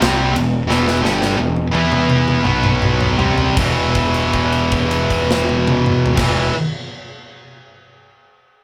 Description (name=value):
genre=heavy metal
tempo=78-90 BPM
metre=4/4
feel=straight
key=E minor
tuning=A4 = 438 Hz
part: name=distorted electric guitar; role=riff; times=0.0-6.5 s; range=E2 to E4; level=-25 LUFS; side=equal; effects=distortion
part: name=heavy high-gain guitar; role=riff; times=0.0-6.5 s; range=E2 to E4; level=-20 LUFS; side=equal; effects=distortion
part: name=growling picked electric bass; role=bass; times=0.0-6.5 s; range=E1 to E2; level=-24 LUFS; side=equal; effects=overdrive
part: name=tight metal drum kit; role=drums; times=0.0-6.4 s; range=crash cymbal, kick drum, ride cymbal, snare drum, toms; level=-22 LUFS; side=equal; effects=none
room=light reverb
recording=rough rehearsal-room recording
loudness=-16 LUFS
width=mono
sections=0.0-3.6 A section; 3.6-6.6 B section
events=slowing down 0.0-3.6; drum fill 0.7-3.6; held note 3.6-6.2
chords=0.0 Em; 2.5 B5; 3.2 C5; 3.6 E5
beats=0.02 | 0.70 1.39 2.10 2.83 | 3.58 4.34 5.11 5.87